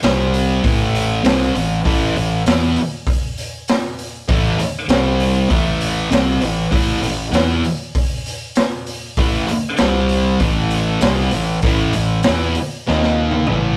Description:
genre	blues rock power trio and southern rock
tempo	98 BPM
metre	4/4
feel	straight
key	unclear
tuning	A4 = 441 Hz
part	thick fuzz guitar	riff	0.0-13.8 s	A2 to E4	-20 LUFS	equal	distortion
part	vintage muted fingered electric bass	bass	0.0-13.8 s	A1 to E2	-25 LUFS	equal	none
part	raw garage drum kit	drums	0.0-13.6 s	hi-hat, kick drum, snare drum, toms	-22 LUFS	equal	none
room	moderate small room ambience, RT60 0.5 s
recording	rough rehearsal-room recording, tube saturation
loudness	-18 LUFS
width	mono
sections	0.0-13.8 A section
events	drum fill 12.9-13.8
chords	0.0 C5; 0.6 A5; 4.9 C5; 5.5 A5; 9.8 C5; 10.4 A5; 12.9 D#5

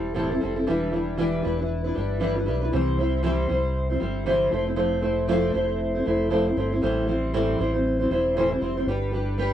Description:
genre	acoustic pop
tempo	117 BPM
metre	4/4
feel	swing 60% on 16ths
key	unclear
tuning	A4 = 439 Hz
part	fingerpicked steel-string acoustic guitar	accompaniment	0.0-9.5 s	A2 to C5	-23 LUFS	equal	double-tracked left and right, cassette tape
part	round analog bass	bass	0.0-9.5 s	E1 to C2	-28 LUFS	equal	none
room	moderate studio ambience, RT60 0.5 s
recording	home recording on cassette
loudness	-22 LUFS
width	side -10 dB against mid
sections	0.0-9.5 A section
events	none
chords	0.0 Am7; 0.7 Em7; 2.7 C; 4.5 Fmaj7; 6.8 Am7; 8.9 G

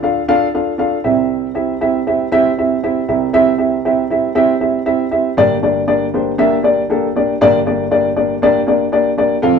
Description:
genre	soul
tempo	118 BPM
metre	4/4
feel	straight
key	unclear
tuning	A4 = 440 Hz
part	dark upright piano	solo	0.0-9.6 s	F1 to F5	-13 LUFS	equal	none
room	moderate studio reverb, RT60 0.8 s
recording	band playing live in one room, nothing above 11.0 kHz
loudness	-13 LUFS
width	side -6 dB against mid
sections	0.0-5.4 A section; 5.4-9.6 B section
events	none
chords	0.0 Dm; 1.1 C; 5.4 Gm

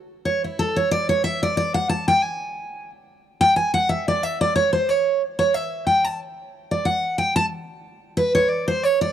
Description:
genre	bluegrass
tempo	182 BPM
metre	4/4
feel	swing 54% on 8ths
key	unclear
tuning	A4 = 440 Hz
part	picked steel-string acoustic guitar	solo	0.3-9.1 s	E4 to A5	-19 LUFS	equal	none
room	little or no reverb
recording	dry, close 1970s-style studio recording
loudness	-19 LUFS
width	side -10 dB against mid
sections	0.0-9.1 A section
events	steel-string acoustic guitar solo 0.0-9.1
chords	none

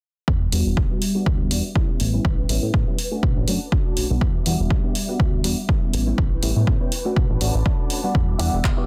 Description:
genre	filtered disco house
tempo	122 BPM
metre	4/4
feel	swing 55% on 16ths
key	E dorian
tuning	A4 = 440 Hz
part	phased string machine	sustained chords	0.3-8.9 s	G3 to D6	-35 LUFS	equal	ensemble chorus, phaser, sidechain pumping, low-pass filter
part	plucky analog bass	bass	0.3-8.7 s	E1 to B2	-25 LUFS	equal	sidechain pumping, low-pass filter
part	electronic kick drum	drums	0.3-8.7 s	none	-23 LUFS	equal	overdrive
part	funky polysynth comp	accompaniment	0.5-8.9 s	G3 to F#5	-29 LUFS	equal	chorus, phaser, cassette tape, sidechain pumping, low-pass filter
part	punchy analog drum machine	drums	0.5-8.8 s	handclaps, hi-hat	-30 LUFS	equal	sidechain pumping on hats
part	direct-recorded clean electric guitar	riff	8.4-8.9 s	E4 to D5	-33 LUFS	equal	subtle chorus, sidechain pumping, low-pass filter
room	light reverb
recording	dense, heavily limited modern master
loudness	-21 LUFS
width	mono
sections	0.3-8.9 A section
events	filter sweep 0.3-8.9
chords	0.3 Em7; 2.0 A9; 3.0 Bm7; 4.2 Em7; 5.9 A9; 6.9 Bm7; 8.1 Em7

